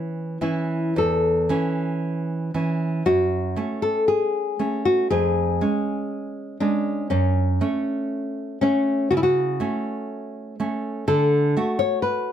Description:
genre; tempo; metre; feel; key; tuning
romantic duo for nylon-string guitar and classical guitar; 53-64 BPM; 4/4; rubato; unclear; A4 = 439 Hz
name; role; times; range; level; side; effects
nylon-string guitar; melody; 0.0-12.3 s; C#4 to C#5; -22 LUFS; left 3 dB; none
nylon-string guitar; accompaniment; 0.0-12.3 s; E2 to F#4; -24 LUFS; right 2 dB; none
room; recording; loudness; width
moderate studio reverb, RT60 0.6 s; none; -20 LUFS; side -10 dB against mid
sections
0.0-12.3 A section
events
none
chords
0.0 A; 3.1 F#m; 5.1 C#/E#; 7.1 F#m; 11.1 D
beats
0.97 2.02 | 3.06 4.08 5.11 6.10 | 7.11 8.11 9.11 10.09 | 11.07 12.03

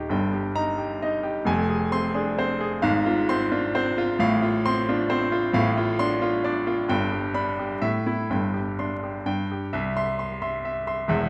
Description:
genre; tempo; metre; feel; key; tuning
classical, virtuoso piano study; 132 BPM; 3/4; rubato; C major from 4.2 s; A4 = 440 Hz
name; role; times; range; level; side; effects
clear baby grand piano; solo; 0.0-11.3 s; Eb1 to C6; -25 LUFS; equal; none
room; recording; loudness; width
wet recital hall reverb, RT60 1.4 s; vinyl crackle; -25 LUFS; mono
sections
0.0-9.7 A section; 9.7-11.3 B section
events
none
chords
0.1 Eb/G; 1.5 Fm; 2.8 Fm/Ab; 4.2 Dm7/A; 6.9 G; 7.8 A5; 8.3 Gsus4; 9.3 N.C.; 9.7 C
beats
| 0.11 0.56 1.02 | 1.47 1.93 2.39 | 2.84 3.30 3.75 | 4.20 4.65 5.09 | 5.54 5.99 6.44 | 6.90 7.35 7.82 | 8.30 8.79 9.26 | 9.74 10.20 10.65 | 11.10

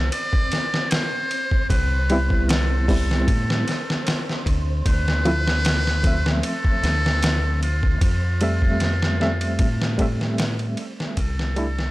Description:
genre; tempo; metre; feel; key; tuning
trip hop; 76 BPM; 4/4; swing 53% on 16ths; D dorian; A4 = 445 Hz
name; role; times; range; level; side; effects
trumpet with metal mute; melody; 0.0-11.9 s; F4 to D5; -27 LUFS; equal; tape echo
deep dub fingered electric bass; bass; 0.0-11.9 s; C2 to A2; -22 LUFS; equal; tube saturation
wind-like tuned noise texture; texture; 0.0-11.9 s; C4; -36 LUFS; equal; built-in reverb
trip hop sampler-style drum kit; drums; 0.1-11.9 s; hi-hat, kick drum, ride cymbal, snare drum; -23 LUFS; equal; none
barky reed electric piano; accompaniment; 2.1-11.8 s; F3 to E5; -26 LUFS; equal; overdrive, fast tremolo, vintage 12-bit sampler grit
room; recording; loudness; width
little or no reverb; dry, gritty hardware recording; -19 LUFS; side -18 dB against mid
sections
0.0-11.9 A section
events
fade-out 9.1-11.9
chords
0.0 N.C.; 1.7 Am7/C; 4.9 Dm7; 8.0 Fmaj7; 11.2 C6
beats
0.12 0.91 | 1.70 2.49 3.28 4.07 | 4.86 5.65 6.44 7.23 | 8.02 8.81 9.60 10.38 | 11.18

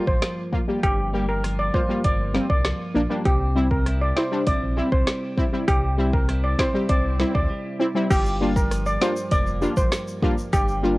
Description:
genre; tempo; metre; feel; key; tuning
dancehall; 99 BPM; 4/4; straight; G dorian; A4 = 443 Hz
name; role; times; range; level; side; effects
synth brass stab; accompaniment; 0.0-11.0 s; G3 to G4; -24 LUFS; left 1 dB; chorus, sidechain pumping
twelve-string electric guitar; arpeggios; 0.0-11.0 s; G2 to F4; -31 LUFS; right 1 dB; wide subtle chorus, tape echo
steel pan; melody; 0.1-10.7 s; G4 to D5; -27 LUFS; equal; tape echo
sub bass with octave; bass; 0.1-11.0 s; F1 to D2; -25 LUFS; equal; none
afro-pop drum kit; drums; 0.1-10.7 s; crash cymbal, hi-hat, kick drum, rim click, snare drum; -23 LUFS; equal; none
swell; sound effects; 6.7-7.5 s; none; -37 LUFS; right 1 dB; none
tube shaker; percussion; 8.1-10.8 s; none; -43 LUFS; left 3 dB; none
room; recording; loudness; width
little or no reverb; worn, warbling old tape, cassette tape, warbly pitch drift; -20 LUFS; side -21 dB against mid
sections
0.0-8.1 A section; 8.1-11.0 B section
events
break 7.5-8.1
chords
0.0 Gm7; 3.3 C; 8.1 Gm7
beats
0.23 | 0.83 1.44 2.04 2.65 | 3.26 3.86 4.47 5.07 | 5.68 6.29 6.89 7.50 | 8.11 8.71 9.32 9.92 | 10.53

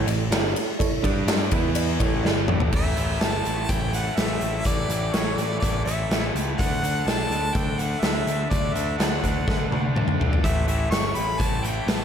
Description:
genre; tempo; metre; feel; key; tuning
classic rock; 125 BPM; 4/4; straight; unclear; A4 = 439 Hz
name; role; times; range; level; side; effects
barky reed electric piano; accompaniment; 0.0-2.6 s; D4 to E5; -29 LUFS; right 6 dB; overdrive, medium tremolo
cranked stack guitar; riff; 0.0-12.0 s; G2 to G4; -33 LUFS; right 9 dB; overdrive, slapback echo
raw garage guitar; riff; 0.0-12.0 s; G2 to G4; -32 LUFS; left 10 dB; overdrive, slapback echo
growling picked electric bass; bass; 0.0-12.0 s; G1 to G2; -28 LUFS; equal; overdrive
big rock drum kit; drums; 0.1-12.0 s; crash cymbal, hi-hat, kick drum, ride cymbal, snare drum, toms; -24 LUFS; equal; none
cowbell; percussion; 0.1-2.6 s; none; -37 LUFS; left 6 dB; none
clear harmonica; melody; 2.8-12.0 s; C#5 to C#6; -29 LUFS; equal; none
room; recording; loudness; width
moderate lush hall reverb, RT60 1.6 s, small room ambience; big arena sound; -21 LUFS; side -8 dB against mid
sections
0.0-2.7 A section; 2.7-12.0 B section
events
drum fill 2.2-2.7, 9.5-10.4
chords
0.0 A; 1.0 G5; 1.5 E5; 2.0 A; 2.7 Asus4; 6.6 D; 10.4 A5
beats
0.32 | 0.80 1.28 1.76 2.25 | 2.73 3.21 3.69 4.17 | 4.66 5.14 5.62 6.10 | 6.59 7.07 7.55 8.03 | 8.51 8.99 9.48 9.96 | 10.44 10.92 11.40 11.88

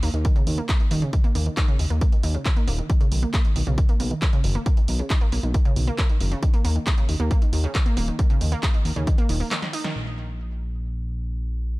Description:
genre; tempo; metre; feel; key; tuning
uplifting trance; 136 BPM; 4/4; straight; Eb minor; A4 = 439 Hz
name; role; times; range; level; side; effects
wide unison pluck; arpeggios; 0.0-9.9 s; Db3 to Eb4; -29 LUFS; right 2 dB; sidechain pumping, digital delay
fat analog bass; bass; 0.0-11.8 s; Eb1 to Eb2; -24 LUFS; equal; sidechain pumping
punchy analog drum machine; drums; 0.0-9.9 s; handclaps, hi-hat, snare drum; -30 LUFS; right 1 dB; low-pass filter on hats, low-pass filter on snare
electronic kick drum; drums; 0.2-9.2 s; none; -20 LUFS; equal; overdrive
room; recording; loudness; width
digital ambience; none; -20 LUFS; side -21 dB against mid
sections
0.0-10.0 A section; 10.0-11.8 B section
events
filter sweep on synth arpeggio sound 0.0-10.0; break 9.5-10.0; drum fill 9.5-10.0; band accent 9.8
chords
0.0 Eb5; 2.9 B; 6.4 Eb5; 10.0 N.C.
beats
0.25 0.69 | 1.13 1.57 2.01 2.46 | 2.90 3.34 3.78 4.22 | 4.66 5.10 5.54 5.98 | 6.43 6.87 7.31 7.75 | 8.19 8.63 9.07 9.51 | 9.96 10.40 10.84 11.28 | 11.72

